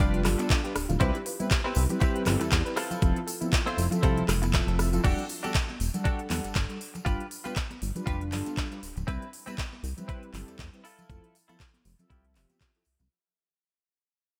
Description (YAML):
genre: nu-disco, nu disco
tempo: 119 BPM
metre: 4/4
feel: swing 56% on 16ths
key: unclear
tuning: A4 = 440 Hz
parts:
  - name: mellow synth brass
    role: accompaniment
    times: 0.0-12.8 s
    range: F3 to F#5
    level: -36 LUFS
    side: equal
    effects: chorus, digital delay
  - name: soft round pluck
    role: arpeggios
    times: 0.0-5.0 s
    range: D4 to B4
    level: -40 LUFS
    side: equal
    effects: chorus, sidechain pumping, digital delay
  - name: direct-recorded clean electric guitar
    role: riff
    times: 0.0-13.0 s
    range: C4 to D5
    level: -38 LUFS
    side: equal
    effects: lush chorus, low-pass filter, digital delay
  - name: chorused synth bass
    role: bass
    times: 0.0-13.1 s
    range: D1 to E2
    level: -31 LUFS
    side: equal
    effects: none
  - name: electronic kick drum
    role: drums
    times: 0.0-12.7 s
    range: none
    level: -30 LUFS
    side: equal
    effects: studio reverb
  - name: pop drum kit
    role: drums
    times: 0.0-13.1 s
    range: crash cymbal, handclaps, hi-hat, rim click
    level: -36 LUFS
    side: equal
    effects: studio reverb
  - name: tambourine and congas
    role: percussion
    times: 0.0-13.1 s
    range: none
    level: -40 LUFS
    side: equal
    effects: none
room: light reverb, digital ambience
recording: bright 1980s-style digital production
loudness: -28 LUFS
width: mono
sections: 0.0-5.0 A section; 5.0-13.1 B section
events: drop 0.0-5.0; fade-out 5.0-13.1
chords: 0.0 G7; 1.0 Cmaj7; 2.8 Fmaj7; 5.0 Em11; 7.1 G7; 9.1 Cmaj7; 10.8 Fmaj7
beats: 0.00 0.51 | 1.01 1.51 2.02 2.52 | 3.03 3.53 4.03 4.54 | 5.04 5.55 6.05 6.55 | 7.06 7.56 8.07 8.57 | 9.08 9.58 10.09 10.59 | 11.09 11.60 12.10 12.61